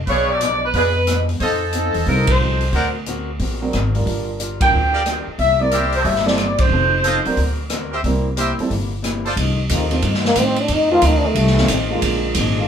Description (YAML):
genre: jazz, big band swing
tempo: 181 BPM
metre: 4/4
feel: swing 64% on 8ths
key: F mixolydian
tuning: A4 = 440 Hz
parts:
  - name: upright bass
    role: bass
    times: 0.0-12.7 s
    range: F1 to A2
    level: -21 LUFS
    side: equal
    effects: none
  - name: warm saxophone section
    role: melody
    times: 0.1-7.6 s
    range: A4 to G5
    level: -18 LUFS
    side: equal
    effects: none
  - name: fingerpicked swing-style acoustic guitar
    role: accompaniment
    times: 0.1-12.6 s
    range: F2 to A#4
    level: -27 LUFS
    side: left 3 dB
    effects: none
  - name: brilliant trumpet section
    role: stabs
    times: 0.1-2.9, 4.9-9.3 s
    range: F4 to F#5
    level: -23 LUFS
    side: right 1 dB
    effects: none
  - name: swinging big-band drum kit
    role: drums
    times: 0.1-12.5 s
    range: hi-hat, kick drum, ride cymbal, rim click, snare drum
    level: -23 LUFS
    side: equal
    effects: none
  - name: warm grand piano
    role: accompaniment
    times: 2.1-12.3 s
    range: D3 to A#4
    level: -24 LUFS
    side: right 4 dB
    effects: none
  - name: warm trombone section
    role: sustained chords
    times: 9.7-12.7 s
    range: D3 to F4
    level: -24 LUFS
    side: left 2 dB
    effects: none
  - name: trombone with plunger mute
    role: melody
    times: 10.3-11.8 s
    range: A3 to F4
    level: -17 LUFS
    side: equal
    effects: none
room: moderate studio ambience, RT60 0.5 s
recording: band playing live in one room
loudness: -16 LUFS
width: side -8 dB against mid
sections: 0.0-9.4 A section; 9.4-12.7 B section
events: band accent 2.2, 4.6, 6.6; trombone solo 9.4-12.7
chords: 0.1 Bdim7; 1.4 F7; 2.7 D7b13; 4.1 Gm7; 5.4 C7; 6.7 F7; 7.4 Daug7; 8.0 C7; 9.4 F7; 12.0 Bb7